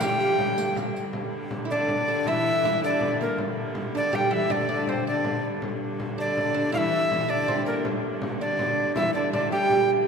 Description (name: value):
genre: medieval dance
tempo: 107 BPM (dotted quarters)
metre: 6/8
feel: straight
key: G dorian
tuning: A4 = 440 Hz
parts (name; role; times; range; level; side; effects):
- breathy bright tenor recorder; melody; 0.0-9.9 s; Bb4 to G5; -26 LUFS; equal; none
- oud; second line; 0.0-9.9 s; Bb3 to G4; -29 LUFS; right 4 dB; none
- rich viola da gamba; second line; 0.0-9.9 s; Bb2 to G3; -31 LUFS; left 5 dB; none
- clear hurdy-gurdy; drone; 0.0-10.1 s; G2 to D3; -33 LUFS; right 1 dB; none
- frame drum; percussion; 0.0-10.0 s; none; -33 LUFS; left 2 dB; none
- riq; percussion; 0.0-1.1 s; none; -37 LUFS; right 2 dB; none
room: wet church reverb, RT60 3.3 s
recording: none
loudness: -23 LUFS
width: side -6 dB against mid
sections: 0.0-1.1 A section; 1.1-10.1 B section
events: none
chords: none